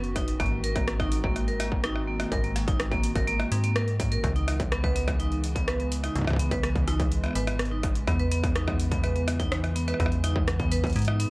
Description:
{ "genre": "IDM", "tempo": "125 BPM", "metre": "4/4", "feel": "straight", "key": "unclear", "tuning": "A4 = 441 Hz", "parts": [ { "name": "hollow soft pad", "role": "sustained chords", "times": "0.0-11.3 s", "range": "C#3 to F#4", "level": "-35 LUFS", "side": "right 1 dB", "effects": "chorus, vintage 12-bit sampler grit, sidechain pumping" }, { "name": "metallic FM bass", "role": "bass", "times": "0.0-11.3 s", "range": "F#1 to G#2", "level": "-28 LUFS", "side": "equal", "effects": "none" }, { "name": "booming analog drum machine", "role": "drums", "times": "0.0-11.3 s", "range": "hi-hat, rim click", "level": "-33 LUFS", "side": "equal", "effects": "none" }, { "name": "vibraphone with hard mallets", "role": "arpeggios", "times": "0.2-11.3 s", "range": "A#3 to B4", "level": "-31 LUFS", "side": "right 1 dB", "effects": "dub echo" }, { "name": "electronic kick drum", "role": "drums", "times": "0.2-10.9 s", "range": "none", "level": "-29 LUFS", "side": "equal", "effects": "distortion" } ], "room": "digital ambience", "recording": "worn, warbling old tape, cassette tape, warbly pitch drift", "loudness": "-24 LUFS", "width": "side -24 dB against mid", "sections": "0.0-11.3 A section", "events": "none", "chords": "0.4 G#7; 4.2 C#m7; 8.1 E6" }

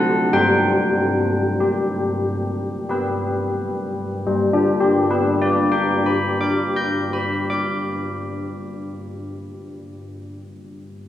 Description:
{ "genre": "classical, tune for church bells", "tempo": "42-49 BPM", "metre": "3/4", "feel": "straight", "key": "G major", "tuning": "A4 = 440 Hz", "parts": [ { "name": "old church bells", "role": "solo", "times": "0.0-10.0 s", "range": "G3 to G6", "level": "-19 LUFS", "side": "left 1 dB", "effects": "none" } ], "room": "wet recital hall reverb, RT60 1.5 s", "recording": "heard from further back in the room", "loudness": "-18 LUFS", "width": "side -12 dB against mid", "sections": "0.0-4.3 A section; 4.3-8.5 B section", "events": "slowing down 0.0-4.3", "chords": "0.3 G" }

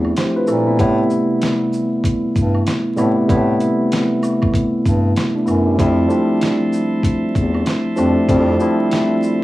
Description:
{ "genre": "hip hop, boom-bap hip-hop", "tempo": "96 BPM", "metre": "4/4", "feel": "swing 61% on 16ths", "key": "A minor", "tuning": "A4 = 440 Hz", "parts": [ { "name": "tine electric piano", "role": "accompaniment", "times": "0.0-9.4 s", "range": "C3 to C5", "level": "-16 LUFS", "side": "equal", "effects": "slow stereo tremolo, cassette tape, high-pass filter, low-pass filter" }, { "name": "warm bass clarinet", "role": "bass", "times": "0.0-8.6 s", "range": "E2 to Bb2", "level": "-19 LUFS", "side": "equal", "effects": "none" }, { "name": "woodblock and maracas", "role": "percussion", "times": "0.0-9.4 s", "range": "none", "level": "-39 LUFS", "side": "right 3 dB", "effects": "none" }, { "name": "boom bap sampler-style drum kit", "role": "drums", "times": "0.2-9.4 s", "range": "hi-hat, kick drum, shaker, snare drum", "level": "-20 LUFS", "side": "equal", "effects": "cassette tape" }, { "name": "tonewheel organ", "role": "sustained chords", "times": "5.8-9.4 s", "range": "E4 to C6", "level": "-29 LUFS", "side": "right 2 dB", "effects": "overdrive, stopped rotary speaker, high-pass filter, low-pass filter, cassette tape" } ], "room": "little or no reverb", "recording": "home recording on cassette, vinyl crackle, small room ambience", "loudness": "-14 LUFS", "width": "side -16 dB against mid", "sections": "0.0-9.4 A section", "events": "none", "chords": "0.0 Fmaj7; 0.8 Am7; 5.8 Fmaj7" }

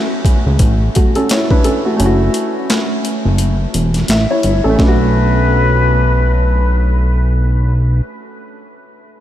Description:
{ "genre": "hip hop, boom-bap hip-hop", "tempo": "86 BPM", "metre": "4/4", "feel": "swing 59% on 16ths", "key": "B minor", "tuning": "A4 = 438 Hz", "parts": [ { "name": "warm upright piano", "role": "accompaniment", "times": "0.0-9.2 s", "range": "A3 to E5", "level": "-18 LUFS", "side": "equal", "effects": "cassette tape, high-pass filter, low-pass filter" }, { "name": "boom bap sampler-style drum kit", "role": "drums", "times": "0.2-5.0 s", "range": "handclaps, hi-hat, kick drum, snare drum", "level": "-17 LUFS", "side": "equal", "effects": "overdrive" }, { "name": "fat analog bass", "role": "bass", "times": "0.5-8.0 s", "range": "E1 to C#2", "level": "-13 LUFS", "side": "equal", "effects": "none" }, { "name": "trumpet with plunger mute", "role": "melody", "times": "4.8-6.8 s", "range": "B4", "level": "-21 LUFS", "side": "left 3 dB", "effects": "high-pass filter, low-pass filter, ping-pong delay" } ], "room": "moderate huge ambient reverb, RT60 7.7 s", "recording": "dreamy mix soaked in reverb", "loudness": "-11 LUFS", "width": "side -12 dB against mid", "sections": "0.0-4.8 A section; 4.8-7.6 B section", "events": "kick muted 2.0-4.8", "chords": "0.0 Dmaj9; 2.0 F#m7; 4.8 Bm9" }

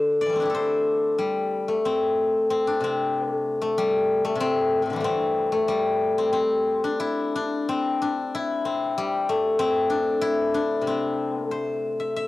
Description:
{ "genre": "chinese traditional", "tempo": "87-99 BPM", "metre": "2/4", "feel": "rubato", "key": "C gong mode", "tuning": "A4 = 440 Hz", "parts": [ { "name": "steel-string zither", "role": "solo", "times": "0.0-12.3 s", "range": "A2 to E5", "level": "-22 LUFS", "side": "left 2 dB", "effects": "none" } ], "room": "light reverb, small room ambience", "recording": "home recording on cassette", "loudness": "-22 LUFS", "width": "side -16 dB against mid", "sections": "0.0-1.8 A section; 1.8-12.1 B section", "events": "none", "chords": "none" }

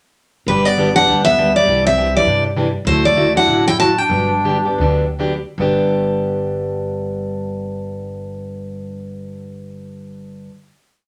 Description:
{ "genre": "acoustic string swing (jazz manouche)", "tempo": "140-202 BPM", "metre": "4/4", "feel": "swing 58% on 8ths", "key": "G major", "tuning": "A4 = 440 Hz", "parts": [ { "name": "picked steel-string acoustic guitar", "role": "melody", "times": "0.5-5.2 s", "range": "B4 to A5", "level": "-17 LUFS", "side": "equal", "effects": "none" }, { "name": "mellow duduk", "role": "second line", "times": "0.5-5.2 s", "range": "G3 to F#4", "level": "-24 LUFS", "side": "equal", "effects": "none" }, { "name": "picked plugged-in steel-string acoustic guitar", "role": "accompaniment", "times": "0.5-10.5 s", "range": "G2 to G4", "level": "-22 LUFS", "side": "equal", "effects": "none" }, { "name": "upright bass", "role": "bass", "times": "0.5-10.4 s", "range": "G1 to G2", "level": "-27 LUFS", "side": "equal", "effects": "none" } ], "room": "wet studio reverb, RT60 0.6 s", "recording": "none", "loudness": "-16 LUFS", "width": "mono", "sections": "0.5-5.6 A section; 5.6-9.0 final chord", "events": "slowing down 2.9-5.6", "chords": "0.5 G; 1.7 Cadd9; 2.9 Dadd9; 4.1 Gmaj7; 5.6 G" }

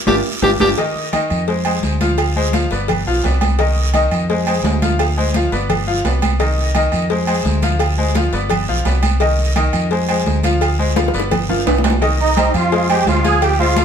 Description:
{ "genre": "latin, salsa", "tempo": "171 BPM", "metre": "4/4", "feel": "straight", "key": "C harmonic minor", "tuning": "A4 = 440 Hz", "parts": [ { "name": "clear tenor saxophone", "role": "melody", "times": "0.1-0.7 s", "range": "G4", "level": "-17 LUFS", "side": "left 1 dB", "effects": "none" }, { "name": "bright concert grand piano", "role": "accompaniment", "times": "0.1-13.8 s", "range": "Eb3 to F5", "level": "-20 LUFS", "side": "left 2 dB", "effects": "none" }, { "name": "fingered electric bass", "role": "bass", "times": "0.1-13.8 s", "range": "G1 to F2", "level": "-18 LUFS", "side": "equal", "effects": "none" }, { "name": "bongos and cowbell", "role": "percussion", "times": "0.1-13.8 s", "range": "none", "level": "-25 LUFS", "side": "left 5 dB", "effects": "none" }, { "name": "congas", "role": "percussion", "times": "0.1-13.8 s", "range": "none", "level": "-24 LUFS", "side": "equal", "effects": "none" }, { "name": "guiro", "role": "percussion", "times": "0.1-13.8 s", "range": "none", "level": "-29 LUFS", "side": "right 4 dB", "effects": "none" }, { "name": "timbales and agogo bells", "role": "percussion", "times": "0.1-13.8 s", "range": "none", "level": "-23 LUFS", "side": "right 7 dB", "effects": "none" }, { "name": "musette accordion", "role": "melody", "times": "12.2-13.8 s", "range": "Eb4 to Ab5", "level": "-16 LUFS", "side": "right 3 dB", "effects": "none" } ], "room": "moderate stone room reverb, RT60 1.0 s", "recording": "band playing live in one room", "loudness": "-14 LUFS", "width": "side -8 dB against mid", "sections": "0.8-12.0 A section; 12.0-13.8 B section", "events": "band accent 0.0-0.8; drum fill 0.1-0.8, 11.0-12.0", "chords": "0.0 G5; 0.8 Ebsus2; 1.5 Fm; 2.2 Dm7b5; 2.9 G7; 3.6 Cm; 4.3 Fm; 5.0 Dm7b5; 5.7 G7; 6.4 Cm; 7.1 Fm; 7.8 Dm7b5; 8.5 G7; 9.2 Cm; 9.9 Fm; 10.6 Dm7b5; 11.3 G7; 12.0 Cm; 12.7 Fm" }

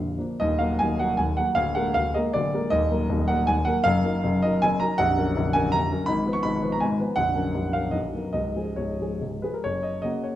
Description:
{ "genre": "classical, romantic triple-time dance for piano with dotted rhythms", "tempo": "130-172 BPM", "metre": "3/4", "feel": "rubato", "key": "Eb minor, F# major from 5.0 s", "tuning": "A4 = 440 Hz", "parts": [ { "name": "dark baby grand piano", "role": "solo", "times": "0.0-10.4 s", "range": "Bb0 to C#6", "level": "-22 LUFS", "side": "equal", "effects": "none" } ], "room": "wet recital hall reverb, RT60 1.5 s", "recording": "dark, warm production", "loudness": "-22 LUFS", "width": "side -12 dB against mid", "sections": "0.4-9.6 A section", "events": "none", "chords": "0.4 Ebm; 1.6 Bb7/D; 2.7 Ebm; 3.9 Ebm/Gb; 5.0 F#/A#; 6.1 Fdim/Ab; 7.2 F#/A#; 7.9 Bmaj7; 8.4 C#; 9.6 F#" }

